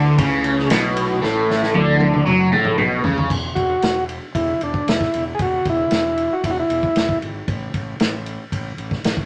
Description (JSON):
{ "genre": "psychedelic rock", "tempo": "115 BPM", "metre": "4/4", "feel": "straight", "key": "unclear", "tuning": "A4 = 440 Hz", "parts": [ { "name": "rich studio string section", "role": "sustained chords", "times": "0.0-3.3 s", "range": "E3 to A4", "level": "-32 LUFS", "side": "equal", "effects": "none" }, { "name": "raw garage guitar", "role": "riff", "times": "0.0-3.3 s", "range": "A2 to F#3", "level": "-19 LUFS", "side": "equal", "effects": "overdrive, phaser" }, { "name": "fuzz fingered electric bass", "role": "bass", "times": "0.0-9.2 s", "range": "E1 to F#2", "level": "-28 LUFS", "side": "equal", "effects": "overdrive" }, { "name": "vintage drum kit", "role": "drums", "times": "0.2-9.3 s", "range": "crash cymbal, kick drum, ride cymbal, snare drum, toms", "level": "-25 LUFS", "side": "equal", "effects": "none" }, { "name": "combo organ", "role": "melody", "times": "3.6-7.2 s", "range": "D4 to G#4", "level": "-22 LUFS", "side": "equal", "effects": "none" } ], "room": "moderate studio reverb, RT60 0.8 s", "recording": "none", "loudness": "-19 LUFS", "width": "mono", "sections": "0.0-3.3 A section; 3.3-9.3 B section", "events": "drum fill 1.2-3.3", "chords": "0.0 A5; 3.3 N.C.", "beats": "0.18 0.70 | 1.22 1.75 2.27 2.79 | 3.31 3.83 4.35 4.87 | 5.39 5.92 6.44 6.96 | 7.48 8.00 8.52 9.05" }